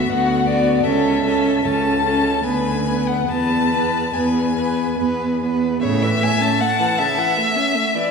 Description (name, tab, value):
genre	classical, slow romantic movement for string quartet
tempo	70-81 BPM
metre	3/4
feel	rubato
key	A major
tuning	A4 = 443 Hz
part	rich violin	melody	0.0-8.1 s	C#5 to A5	-22 LUFS	left 6 dB	none
part	rich violin	second line	0.0-8.1 s	F#4 to F#5	-22 LUFS	left 1 dB	none
part	rich viola	accompaniment	0.0-8.1 s	C#3 to C#4	-21 LUFS	right 2 dB	none
part	rich cello	bass	0.1-6.5 s	C#2 to A2	-23 LUFS	right 2 dB	none
room	wet concert hall reverb, RT60 1.9 s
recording	heard from further back in the room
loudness	-16 LUFS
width	side -5 dB against mid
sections	0.0-5.8 A section; 5.8-8.1 B section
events	none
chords	0.0 Bm/D; 0.8 A/C#; 2.4 Bm/D; 3.3 E; 5.8 A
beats	0.10 | 0.85 1.65 2.45 | 3.29 4.14 4.99 | 5.83 6.61 7.38